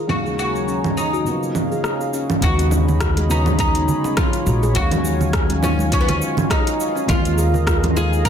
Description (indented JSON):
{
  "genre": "organic downtempo",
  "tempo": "103 BPM",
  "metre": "4/4",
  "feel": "swing 57% on 16ths",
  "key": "unclear",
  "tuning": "A4 = 440 Hz",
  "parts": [
    { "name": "oud", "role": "melody", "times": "0.0-8.3 s", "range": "Cb4 to Bb4", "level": "-23 LUFS", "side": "equal", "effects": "digital delay" },
    { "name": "felt-muted upright piano", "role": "accompaniment", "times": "0.0-8.3 s", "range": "Eb2 to F5", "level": "-26 LUFS", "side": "left 1 dB", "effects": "sidechain pumping, tape echo" },
    { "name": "warm analog pad", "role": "sustained chords", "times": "0.0-8.3 s", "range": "Eb3 to B5", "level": "-28 LUFS", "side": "left 1 dB", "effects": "chorus, sidechain pumping" },
    { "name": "deep house drum kit", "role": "drums", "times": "0.1-8.3 s", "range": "cabasa, congas, hi-hat, rim click", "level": "-23 LUFS", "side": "right 2 dB", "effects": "overdrive" },
    { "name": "kalimba", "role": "arpeggios", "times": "0.3-7.7 s", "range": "Db4 to Bb4", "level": "-28 LUFS", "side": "left 1 dB", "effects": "tape echo" },
    { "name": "upright bass", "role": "bass", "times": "2.4-8.3 s", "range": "Bb1 to D#2", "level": "-19 LUFS", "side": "equal", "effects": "sidechain pumping" },
    { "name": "electronic kick drum", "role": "drums", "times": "2.4-8.3 s", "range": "none", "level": "-21 LUFS", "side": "equal", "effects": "overdrive" },
    { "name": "congas and bongos", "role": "percussion", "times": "2.9-7.9 s", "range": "none", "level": "-28 LUFS", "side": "right 4 dB", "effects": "none" }
  ],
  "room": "moderate recital hall reverb, RT60 1.4 s, small room ambience",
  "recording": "dense, heavily limited modern master, low-pass filter",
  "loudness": "-16 LUFS",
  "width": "side -8 dB against mid",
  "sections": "0.0-2.4 A section; 2.4-8.3 B section",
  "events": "filter sweep on felt piano 0.0-2.4; filter sweep on analog synth pad 0.0-2.4; filter sweep 0.0-2.4",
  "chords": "0.1 Gbmaj9/Eb; 1.3 Db13; 2.4 B69/D#; 4.8 Ebm11; 7.1 Bb7sus4/Eb",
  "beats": "| 0.10 0.68 1.26 1.84 | 2.43 3.01 3.59 4.17 | 4.76 5.34 5.92 6.50 | 7.09 7.67 8.25"
}